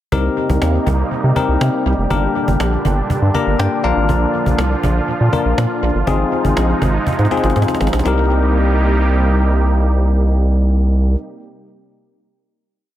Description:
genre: dance-pop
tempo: 121 BPM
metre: 4/4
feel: straight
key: C minor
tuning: A4 = 440 Hz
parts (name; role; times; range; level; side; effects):
- bell-like tine electric piano; accompaniment; 0.1-11.2 s; Bb3 to Bb5; -20 LUFS; left 5 dB; analog delay
- filtered supersaw swell; sustained chords; 0.1-11.2 s; Bb2 to G4; -21 LUFS; right 2 dB; none
- round analog bass; bass; 0.1-11.2 s; F1 to C3; -15 LUFS; equal; none
- cajon; drums; 0.1-8.2 s; none; -23 LUFS; equal; analog delay
room: light reverb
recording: echo-heavy mix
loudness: -14 LUFS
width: side -12 dB against mid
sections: 0.1-8.1 verse; 8.1-12.0 final chord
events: tine electric piano fill 3.1-4.1; drum fill 7.1-8.1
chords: 0.1 Cm7; 2.1 Gm; 3.8 Bb; 6.1 Fm7/Ab; 8.1 Cm7

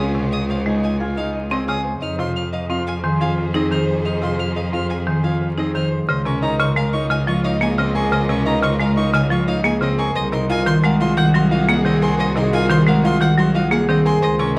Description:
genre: classical, minimalist pattern music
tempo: 177 BPM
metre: 6/4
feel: straight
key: Db major from 6.1 s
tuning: A4 = 442 Hz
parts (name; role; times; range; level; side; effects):
- concert harp; melody; 0.0-14.6 s; Ab4 to C6; -29 LUFS; equal; none
- rich chamber string section; sustained chords; 0.0-14.6 s; F4 to Eb5; -35 LUFS; equal; none
- bright concert grand piano; arpeggios; 0.0-14.6 s; C4 to Eb5; -27 LUFS; equal; none
- rich violin; arpeggios; 0.0-14.6 s; Eb5 to F6; -31 LUFS; equal; none
- bright cello; bass; 0.0-14.6 s; C2 to F2; -26 LUFS; equal; none
- buzzing marimba with hard mallets; accompaniment; 0.1-14.6 s; C3 to Eb4; -22 LUFS; equal; none
room: moderate large studio reverb, RT60 1.3 s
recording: close, detailed microphones, vinyl crackle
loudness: -19 LUFS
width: mono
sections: 0.0-6.1 A section; 6.1-14.6 B section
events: none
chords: 0.0 Dbmaj7; 2.0 Fm; 6.1 Dbmaj9; 10.2 Ab9/C

